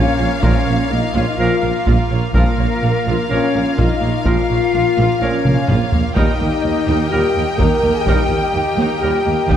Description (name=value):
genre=cinematic, epic orchestral film score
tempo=126 BPM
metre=4/4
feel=straight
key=Bb dorian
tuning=A4 = 440 Hz
part: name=warm symphonic violin section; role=melody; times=0.0-9.6 s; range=F5 to G5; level=-26 LUFS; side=left 4 dB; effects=none
part: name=silver concert flute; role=second line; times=0.0-9.6 s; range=Bb4 to Bb5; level=-26 LUFS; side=left 1 dB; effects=none
part: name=warm symphonic violin section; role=second line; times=0.0-9.6 s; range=Eb5 to F5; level=-31 LUFS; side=left 6 dB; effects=none
part: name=rich symphonic viola section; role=accompaniment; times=0.0-9.6 s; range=Eb4 to Db5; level=-29 LUFS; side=right 2 dB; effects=none
part: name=mellow French horn section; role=sustained chords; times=0.0-9.6 s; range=Bb3 to Bb4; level=-20 LUFS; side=left 4 dB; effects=none
part: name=pipe organ, strings celeste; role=sustained chords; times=0.0-9.6 s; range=Bb3 to F5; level=-26 LUFS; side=right 1 dB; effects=none
part: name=mellow tuba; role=bass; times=0.0-9.6 s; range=Bb1 to Eb2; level=-24 LUFS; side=right 4 dB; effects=none
part: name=rich symphonic cello section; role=bass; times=0.0-9.6 s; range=Eb2 to Bb2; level=-24 LUFS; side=right 3 dB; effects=none
part: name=rich symphonic double bass section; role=bass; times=0.0-9.6 s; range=Bb1 to Eb2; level=-23 LUFS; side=right 3 dB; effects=none
part: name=bright trombone section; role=sustained chords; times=0.4-9.2 s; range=Bb2 to G3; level=-29 LUFS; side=right 4 dB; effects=none
part: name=clear trumpet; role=stabs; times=0.4-9.2 s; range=Bb4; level=-28 LUFS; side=right 1 dB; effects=none
part: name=solo taiko drums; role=drums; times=0.4-9.6 s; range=none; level=-19 LUFS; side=equal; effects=none
room=moderate concert hall reverb, RT60 1.9 s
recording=none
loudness=-14 LUFS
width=side -9 dB against mid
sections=0.0-9.6 A section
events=drum fill 5.4-6.2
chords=0.0 Bbm; 6.2 Eb